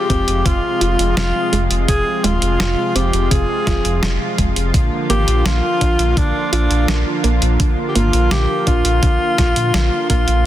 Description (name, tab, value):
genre	synthwave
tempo	84 BPM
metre	4/4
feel	straight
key	unclear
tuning	A4 = 440 Hz
part	warm alto saxophone	melody	0.0-10.5 s	D4 to Ab4	-20 LUFS	equal	tape echo
part	lush unison pad	sustained chords	0.0-10.4 s	C3 to F4	-22 LUFS	equal	chorus, sidechain pumping
part	warbly dusty pluck	arpeggios	0.0-10.3 s	C3 to F4	-26 LUFS	right 3 dB	chorus, tape echo
part	round analog bass	bass	0.1-10.4 s	Eb1 to Bb2	-18 LUFS	equal	sidechain pumping
part	detuned 8-bit digital drum machine	drums	0.1-10.4 s	hi-hat, snare drum	-23 LUFS	equal	none
part	electronic kick drum	drums	0.1-10.2 s	none	-18 LUFS	equal	none
room	light reverb, digital ambience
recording	dense, heavily limited modern master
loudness	-14 LUFS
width	side -13 dB against mid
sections	0.0-10.5 A section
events	none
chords	0.0 Fm; 4.7 Bb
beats	0.46 1.17 | 1.89 2.60 3.31 4.03 | 4.74 5.46 6.17 6.88 | 7.60 8.31 9.03 9.74 | 10.46